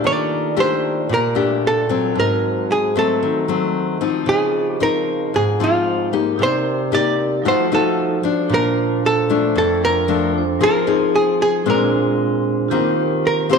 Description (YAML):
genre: bossa nova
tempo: 114 BPM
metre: 4/4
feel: straight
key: Bb major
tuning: A4 = 440 Hz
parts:
  - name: nylon-string guitar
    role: accompaniment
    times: 0.0-13.6 s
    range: F2 to Ab4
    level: -19 LUFS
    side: left 6 dB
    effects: none
  - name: vibraphone with medium mallets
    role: accompaniment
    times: 0.0-13.6 s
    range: F3 to A5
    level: -24 LUFS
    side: right 12 dB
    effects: none
  - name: archtop guitar, miked and amplified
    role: melody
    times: 0.1-13.6 s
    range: F4 to D5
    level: -19 LUFS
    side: right 2 dB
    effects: none
room: wet echo chamber reverb, RT60 1.4 s, small room ambience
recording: 1960s-style stereo with parts hard left and right, lossy compression artefacts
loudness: -16 LUFS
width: side -5 dB against mid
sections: 0.0-12.7 A section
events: none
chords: 0.0 Ebmaj9#11; 2.2 Ab7b9; 4.3 Dbmaj9; 6.4 Cm7; 7.4 F7b9; 8.5 Bbmaj7; 10.6 Fm7; 11.7 Bb9; 12.7 Eb6